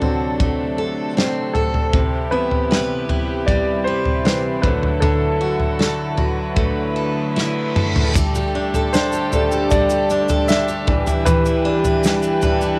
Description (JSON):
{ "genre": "pop ballad", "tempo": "78 BPM", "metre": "4/4", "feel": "straight", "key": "G major", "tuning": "A4 = 441 Hz", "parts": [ { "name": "warm concert grand piano", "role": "accompaniment", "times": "0.0-12.8 s", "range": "C3 to E5", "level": "-25 LUFS", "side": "equal", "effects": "cassette tape" }, { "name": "warm chamber string section", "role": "sustained chords", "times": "0.0-12.8 s", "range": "C3 to B4", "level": "-28 LUFS", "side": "equal", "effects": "cassette tape" }, { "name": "picked steel-string acoustic guitar", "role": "arpeggios", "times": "0.0-12.8 s", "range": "C3 to B4", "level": "-25 LUFS", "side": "equal", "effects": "cassette tape" }, { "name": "natural country drum kit", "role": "drums", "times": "0.0-12.6 s", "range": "crash cymbal, kick drum, snare drum, toms", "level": "-23 LUFS", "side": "equal", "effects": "cassette tape" }, { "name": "reverse cymbal", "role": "sound effects", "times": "7.0-8.2 s", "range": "none", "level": "-30 LUFS", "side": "equal", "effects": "none" }, { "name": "dark French horn section", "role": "second line", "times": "8.2-12.8 s", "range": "D4 to G4", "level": "-27 LUFS", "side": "equal", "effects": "cassette tape" }, { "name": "tube shaker", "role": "percussion", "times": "8.2-12.8 s", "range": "none", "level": "-36 LUFS", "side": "equal", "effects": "none" } ], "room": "light reverb", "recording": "home recording on cassette", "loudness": "-19 LUFS", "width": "mono", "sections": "0.0-8.2 A section; 8.2-12.8 B section", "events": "grand piano solo 0.0-8.2, 8.2-12.8; reverse cymbal 7.0-8.2; drum fill 7.4-8.2", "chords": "0.0 D7; 1.9 Cmaj7; 4.6 Dadd9; 8.2 Gsus2; 10.9 Em7", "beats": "0.40 1.17 | 1.94 2.71 3.48 4.25 | 5.02 5.79 6.57 7.36 | 8.15 8.94 9.71 10.49 | 11.26 12.04" }